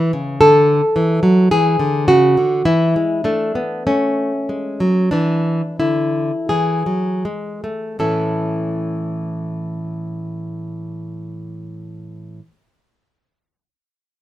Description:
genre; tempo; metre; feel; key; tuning
classical, baroque-style dance for nylon-string guitar; 39-55 BPM; 4/4; rubato; A major; A4 = 440 Hz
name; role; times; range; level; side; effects
nylon-string guitar; solo; 0.0-12.4 s; A2 to B4; -16 LUFS; equal; none
room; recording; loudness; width
moderate studio ambience, RT60 0.5 s; minimal, uncompressed stereo recording; -15 LUFS; side -14 dB against mid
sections
0.0-8.0 A section; 8.0-13.9 B section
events
slowing down 0.0-8.0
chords
0.4 Dmaj9#11; 2.7 A/E; 5.1 E7; 8.0 A

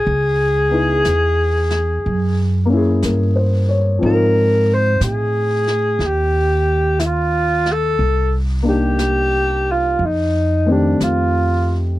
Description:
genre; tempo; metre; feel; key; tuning
jazz ballad; 60 BPM; 4/4; swing 68% on 8ths; unclear; A4 = 439 Hz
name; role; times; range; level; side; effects
breathy alto saxophone; melody; 0.0-11.8 s; D4 to C5; -18 LUFS; equal; none
dark grand piano; accompaniment; 0.0-12.0 s; Eb3 to C#5; -20 LUFS; left 2 dB; none
upright bass; bass; 0.1-12.0 s; C2 to A2; -18 LUFS; equal; none
jazz brush drum kit; drums; 0.1-12.0 s; brushed snare drum, hi-hat, snare drum; -33 LUFS; left 1 dB; none
room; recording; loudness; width
little or no reverb; dry, close 1970s-style studio recording; -14 LUFS; side -16 dB against mid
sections
0.0-12.0 A section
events
none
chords
0.1 C#m7; 2.0 F#9; 4.0 Ab6; 8.0 Cm7; 10.0 F9

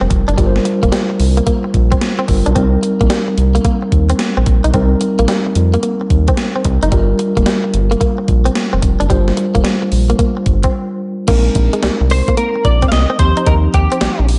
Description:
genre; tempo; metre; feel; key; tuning
R&B, new jack swing; 110 BPM; 4/4; swing 65% on 16ths; C minor; A4 = 439 Hz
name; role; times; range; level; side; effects
mellow tine electric piano; accompaniment; 0.0-14.4 s; F3 to C5; -21 LUFS; equal; none
direct-recorded clean electric guitar; riff; 0.0-14.2 s; G3 to Eb4; -23 LUFS; equal; subtle chorus
round analog bass; bass; 0.0-14.4 s; F1 to F2; -16 LUFS; equal; none
gated 80s digital drum machine; drums; 0.1-14.4 s; crash cymbal, hi-hat, kick drum, snare drum; -19 LUFS; equal; gated reverb, gated reverb snare
direct-recorded clean electric guitar; melody; 12.1-14.2 s; G4 to F5; -20 LUFS; equal; ensemble chorus, diffuse ambient delay
room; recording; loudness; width
moderate plate reverb, RT60 1.3 s, digital ambience; dreamy mix soaked in reverb, nothing above 10.9 kHz; -14 LUFS; mono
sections
0.0-11.3 A section; 11.3-14.4 B section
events
break 10.7-11.3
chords
0.0 Gm7; 2.6 Cm7; 6.9 Gm7; 11.3 Bb9sus4; 13.2 Eb69

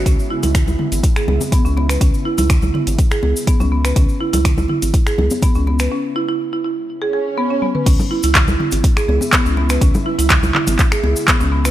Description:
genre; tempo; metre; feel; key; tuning
afro house; 123 BPM; 4/4; straight; C# minor pentatonic; A4 = 441 Hz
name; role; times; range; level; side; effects
ethereal airy pad; sustained chords; 0.0-11.7 s; C#3 to E4; -29 LUFS; right 1 dB; ensemble chorus, built-in reverb, sidechain pumping
buzzing marimba with medium mallets; arpeggios; 0.0-11.7 s; B3 to B4; -20 LUFS; right 2 dB; sidechain pumping, ping-pong delay
round analog bass; bass; 0.0-11.7 s; G#1 to C#2; -18 LUFS; equal; sidechain pumping
afro-pop drum kit; drums; 0.1-11.7 s; crash cymbal, finger snaps, handclaps, hi-hat, toms; -20 LUFS; equal; none
electronic kick drum; drums; 0.1-11.4 s; none; -16 LUFS; equal; none
cabasa; percussion; 0.1-11.7 s; none; -30 LUFS; left 2 dB; none
congas; percussion; 0.4-11.5 s; none; -25 LUFS; left 2 dB; none
swell; sound effects; 7.1-7.9 s; none; -24 LUFS; right 8 dB; none
room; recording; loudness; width
little or no reverb; none; -14 LUFS; side -13 dB against mid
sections
0.0-7.9 A section; 7.9-11.7 B section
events
break 5.9-7.9; swell 7.1-7.9; drum fill 7.6; drop 7.9-11.7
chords
0.0 C#m7

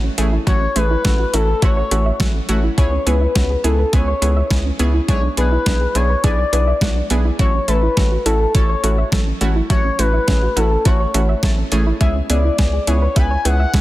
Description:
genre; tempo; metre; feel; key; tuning
synth-pop; 104 BPM; 4/4; straight; A major; A4 = 441 Hz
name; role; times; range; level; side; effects
analog pluck; accompaniment; 0.0-13.8 s; A3 to B4; -24 LUFS; right 1 dB; chorus
soft round pluck; arpeggios; 0.0-13.8 s; F#3 to E5; -26 LUFS; right 3 dB; chorus, digital delay
round analog bass; bass; 0.0-13.8 s; A1 to C#2; -18 LUFS; equal; none
clean 12-bit digital drum machine; drums; 0.2-13.8 s; hi-hat, kick drum, snare drum; -18 LUFS; equal; overdrive
expressive synth lead; melody; 0.5-13.8 s; A4 to G#5; -21 LUFS; left 3 dB; chorus, digital delay
room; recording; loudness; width
light reverb, digital ambience; dense, heavily limited modern master; -14 LUFS; side -16 dB against mid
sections
0.0-13.8 A section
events
none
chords
0.0 A6; 2.8 C#m7; 5.1 E7/B; 7.4 A6; 12.0 C#m7

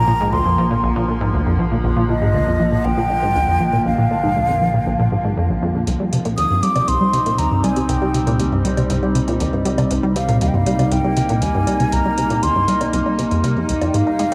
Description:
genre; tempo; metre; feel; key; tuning
ambient, sequencer-driven space music; 119 BPM; 4/4; straight; unclear; A4 = 440 Hz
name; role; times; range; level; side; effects
mellow hollow concert flute; melody; 0.0-14.3 s; Eb5 to Eb6; -24 LUFS; equal; tape echo
evolving wavetable pad; sustained chords; 0.0-14.3 s; D3 to Eb4; -25 LUFS; equal; chorus, built-in reverb, phaser
plucky analog bass; riff; 0.0-14.3 s; Bb1 to Eb4; -22 LUFS; equal; lush chorus, tape echo
analog drone; bass; 0.0-14.3 s; Ab1 to C2; -27 LUFS; equal; chorus
electronic hi-hat and woodblock; percussion; 5.9-14.3 s; none; -32 LUFS; equal; none
room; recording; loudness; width
wet huge ambient reverb, RT60 7.6 s; none; -18 LUFS; mono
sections
0.0-14.3 A section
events
none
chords
0.0 Bb; 5.9 Cm

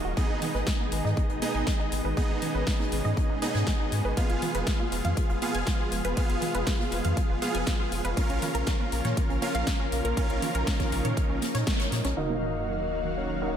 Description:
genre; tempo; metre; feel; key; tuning
progressive house; 120 BPM; 4/4; straight; Eb minor; A4 = 440 Hz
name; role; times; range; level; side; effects
supersaw pad; sustained chords; 0.0-13.6 s; Cb3 to F5; -34 LUFS; equal; wide subtle chorus, sidechain pumping, low-pass filter
wide unison pluck; arpeggios; 0.0-12.1 s; Db4 to Ab5; -36 LUFS; equal; sidechain pumping, ping-pong delay
supersaw stab; stabs; 0.0-13.6 s; Bb3 to F5; -32 LUFS; right 2 dB; sidechain pumping, low-pass filter, ping-pong delay
round analog bass; bass; 0.0-13.6 s; Eb1 to Bb2; -31 LUFS; equal; sidechain pumping
electronic kick drum; drums; 0.2-11.8 s; none; -28 LUFS; equal; small room ambience
soft-mallet drum kit; drums; 0.2-13.5 s; hi-hat, snare drum; -43 LUFS; left 3 dB; none
congas; percussion; 0.2-13.1 s; none; -39 LUFS; right 4 dB; sidechain pumping on perc, small room ambience
big-room dance drum kit; drums; 0.4-12.1 s; hi-hat, snare drum; -35 LUFS; left 1 dB; small room ambience
soft octave-layered synth lead; melody; 12.2-13.6 s; Db5 to Eb5; -33 LUFS; left 1 dB; chorus, phaser, ping-pong delay
sub drop; sound effects; 12.2-13.6 s; none; -38 LUFS; left 1 dB; none
room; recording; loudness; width
moderate lush hall reverb, RT60 1.8 s; dreamy mix soaked in reverb; -25 LUFS; side -9 dB against mid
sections
0.0-12.2 A section; 12.2-13.6 B section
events
filter sweep on synth pluck 0.0-12.2; filter sweep on supersaw synth 0.0-12.2, 12.2-13.6; band accent 11.7; impact 12.2-13.6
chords
0.2 Abm; 4.2 Fdim; 8.2 Bbm; 12.2 Ebmadd9

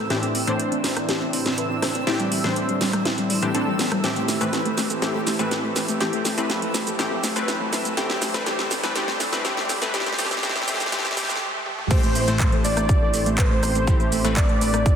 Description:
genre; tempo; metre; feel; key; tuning
progressive house; 122 BPM; 4/4; straight; A minor; A4 = 438 Hz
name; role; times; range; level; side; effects
warm analog pad; sustained chords; 0.0-15.0 s; A3 to C5; -32 LUFS; right 2 dB; lush chorus, sidechain pumping
soft round pluck; arpeggios; 0.0-14.9 s; G3 to C5; -28 LUFS; equal; analog chorus, sidechain pumping, ping-pong delay
supersaw stab; stabs; 0.0-15.0 s; A2 to C5; -26 LUFS; left 2 dB; sidechain pumping, low-pass filter, ping-pong delay
fat analog bass; bass; 0.0-15.0 s; A1; -33 LUFS; equal; none
riser; sound effects; 0.1-11.9 s; none; -36 LUFS; right 1 dB; none
backwards swelling texture; texture; 0.0-11.4 s; E6; -35 LUFS; right 1 dB; built-in reverb, sidechain pumping
house drum kit; drums; 0.1-15.0 s; crash cymbal, handclaps, hi-hat, rim click, shaker, snare drum, toms; -26 LUFS; right 1 dB; soft clipping on snare
wide unison lead; melody; 11.9-15.0 s; C5 to D5; -25 LUFS; right 1 dB; sidechain pumping, ping-pong delay
electronic kick drum; drums; 11.9-15.0 s; none; -19 LUFS; equal; none
room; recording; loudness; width
moderate lush hall reverb, RT60 2.1 s; dense, heavily limited modern master, high-pass filter; -20 LUFS; side -8 dB against mid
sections
0.0-11.9 A section; 11.9-15.0 B section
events
build-up 0.0-11.9; drum fill 0.0-11.4, 11.7; filter sweep on synth pluck 0.0-11.9; filter sweep on supersaw synth 0.0-11.9; filter sweep 0.0-11.9; break 11.4-11.9; drop 11.9-15.0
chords
0.1 Cadd9/A; 4.0 Am7; 8.0 Cadd9/A; 11.9 Am7

